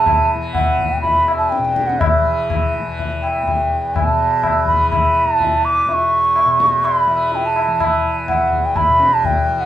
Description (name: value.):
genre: indian classical, Hindustani.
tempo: 124 BPM.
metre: 4/4.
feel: straight.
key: E raga bhimpalasi.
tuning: A4 = 441 Hz.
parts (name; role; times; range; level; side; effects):
mellow bansuri; melody; 0.0-9.7 s; E5 to D6; -15 LUFS; right 2 dB; none.
tanpura; drone; 0.0-9.7 s; E2 to E3; -25 LUFS; left 1 dB; none.
tabla; percussion; 0.1-9.4 s; none; -20 LUFS; left 3 dB; none.
room: moderate small room ambience, RT60 0.5 s.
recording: none.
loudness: -14 LUFS.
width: side -12 dB against mid.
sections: 0.0-9.7 A section.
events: none.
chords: none.